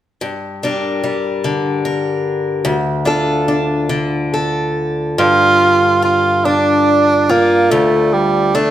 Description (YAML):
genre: celtic folk, Celtic slow air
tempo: 48 BPM (dotted quarters)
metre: 6/8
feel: rubato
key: G minor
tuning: A4 = 440 Hz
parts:
  - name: picked steel-string acoustic guitar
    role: accompaniment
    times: 0.2-8.7 s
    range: D2 to Bb4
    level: -16 LUFS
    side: left 2 dB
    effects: none
  - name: clear tenor saxophone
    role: melody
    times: 5.2-8.7 s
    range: G3 to F4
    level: -12 LUFS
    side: right 2 dB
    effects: none
room: moderate recital hall reverb, RT60 1.4 s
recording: none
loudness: -12 LUFS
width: side -12 dB against mid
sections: 0.2-5.2 A section; 5.2-8.7 B section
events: none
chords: 0.2 Gm; 2.7 Dm; 5.2 G5; 7.7 Dm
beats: | 0.22 1.46 | 2.67 3.92 | 5.19 6.47 | 7.72